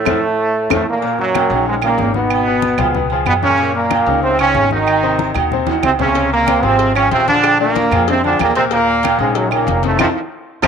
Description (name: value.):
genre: latin, salsa.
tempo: 187 BPM.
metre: 4/4.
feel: straight.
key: unclear.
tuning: A4 = 440 Hz.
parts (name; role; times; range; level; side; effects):
brilliant trombone section; melody; 0.0-10.7 s; Gb2 to Eb4; -15 LUFS; right 2 dB; slapback echo.
bright baby grand piano; accompaniment; 0.1-10.7 s; Bb2 to D5; -20 LUFS; left 13 dB; none.
upright bass; bass; 0.1-10.7 s; F1 to Gb2; -23 LUFS; equal; none.
bongos and cowbell; percussion; 0.1-0.8, 6.2-10.7 s; none; -26 LUFS; left 14 dB; none.
claves; percussion; 0.1-10.7 s; none; -23 LUFS; right 13 dB; none.
congas; percussion; 0.1-10.7 s; none; -25 LUFS; left 9 dB; none.
timbales and agogo bells; percussion; 0.1-10.7 s; none; -21 LUFS; right 13 dB; none.
room: moderate spring reverb, RT60 1.8 s, small room ambience.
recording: 1960s-style stereo with parts hard left and right.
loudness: -12 LUFS.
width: side -7 dB against mid.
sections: 0.0-1.0 A section; 1.0-10.7 B section.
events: band accent 0.0-1.0, 10.0-10.7; drum fill 0.2-1.0, 5.7-6.2, 10.0-10.7.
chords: 0.0 F; 1.0 Ebm7; 2.3 Abm7; 3.0 Db7; 3.6 Gb6; 4.9 Ab7; 6.2 Dbmaj7; 7.4 Bb7; 8.7 Ebm7; 10.0 F5.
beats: 0.06 0.38 0.70 | 1.03 1.35 1.67 1.99 | 2.31 2.63 2.95 3.27 | 3.59 3.91 4.23 4.55 | 4.87 5.19 5.51 5.83 | 6.16 6.47 6.79 7.12 | 7.43 7.75 8.07 8.39 | 8.71 9.04 9.36 9.68 | 9.99 10.31 10.63.